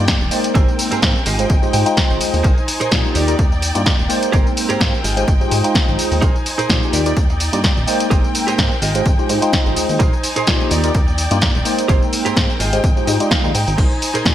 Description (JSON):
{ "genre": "filtered disco house", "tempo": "127 BPM", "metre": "4/4", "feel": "swing 55% on 16ths", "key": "unclear", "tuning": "A4 = 444 Hz", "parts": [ { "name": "bright tine electric piano", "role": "accompaniment", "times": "0.0-14.3 s", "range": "Ab3 to G5", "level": "-20 LUFS", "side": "equal", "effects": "medium stereo tremolo, phaser, sidechain pumping" }, { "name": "rich symphonic string section", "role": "sustained chords", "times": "0.0-14.3 s", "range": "Eb3 to Ab5", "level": "-25 LUFS", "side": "left 1 dB", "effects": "sidechain pumping" }, { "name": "plucky analog bass", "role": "bass", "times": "0.0-14.3 s", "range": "Eb1 to Bb2", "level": "-21 LUFS", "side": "equal", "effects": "sidechain pumping" }, { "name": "electronic kick drum", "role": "drums", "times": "0.1-14.3 s", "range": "none", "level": "-17 LUFS", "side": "equal", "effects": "studio reverb" }, { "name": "punchy analog drum machine", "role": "drums", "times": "0.1-14.3 s", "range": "crash cymbal, hi-hat, snare drum, tambourine", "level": "-20 LUFS", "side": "equal", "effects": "sidechain pumping on hats, studio reverb, sidechain pumping on perc, sidechain pumping on cymbals, gated reverb" }, { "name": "direct-recorded clean electric guitar", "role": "riff", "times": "0.3-14.3 s", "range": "C4 to G5", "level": "-24 LUFS", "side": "right 4 dB", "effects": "lush chorus, sidechain pumping" } ], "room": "light reverb", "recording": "bright 1980s-style digital production", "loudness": "-14 LUFS", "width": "side -12 dB against mid", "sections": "0.0-14.3 A section", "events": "clean electric guitar fill 1.5-2.4, 12.8-13.8", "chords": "0.0 Ebmaj7; 0.6 Abmaj9; 1.3 Fm9/Ab; 2.4 Bb9sus4; 3.2 Ebmaj7; 4.3 Abmaj9; 5.0 Fm9/Ab; 6.2 Bb9sus4; 6.9 Ebmaj7; 8.1 Abmaj9; 8.8 Fm9/Ab; 10.0 Bb9sus4; 10.7 Ebmaj7; 11.9 Abmaj9; 12.6 Fm9/Ab; 13.8 Bb9sus4" }